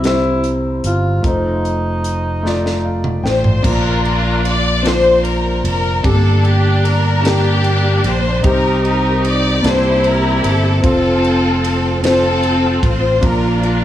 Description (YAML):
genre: slow gospel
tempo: 50 BPM (dotted quarters)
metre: 6/8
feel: straight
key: Bb major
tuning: A4 = 440 Hz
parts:
  - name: warm tenor saxophone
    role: melody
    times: 0.0-3.3 s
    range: Eb4 to F4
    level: -22 LUFS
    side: right 1 dB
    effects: tape echo
  - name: warm concert grand piano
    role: accompaniment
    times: 0.0-13.8 s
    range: G2 to A5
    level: -18 LUFS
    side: left 1 dB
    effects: none
  - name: fingered electric bass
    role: bass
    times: 0.0-13.8 s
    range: F1 to C2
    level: -18 LUFS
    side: equal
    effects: none
  - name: crisp fusion drum kit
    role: drums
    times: 0.0-13.8 s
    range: crash cymbal, hi-hat, kick drum, ride cymbal, snare drum, toms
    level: -22 LUFS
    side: equal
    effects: none
  - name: clear symphonic string section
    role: melody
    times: 3.3-13.8 s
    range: Bb3 to D5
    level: -16 LUFS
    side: left 2 dB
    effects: none
room: light reverb, studio reverb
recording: none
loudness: -12 LUFS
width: side -12 dB against mid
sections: 0.0-3.6 A section; 3.6-13.8 B section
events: drum fill 2.4-3.6; grand piano fill 2.4-3.6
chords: 0.0 C7; 1.2 F7; 3.6 Bb; 6.0 Gm; 8.4 Cm; 9.6 C13; 10.8 F; 13.2 Bb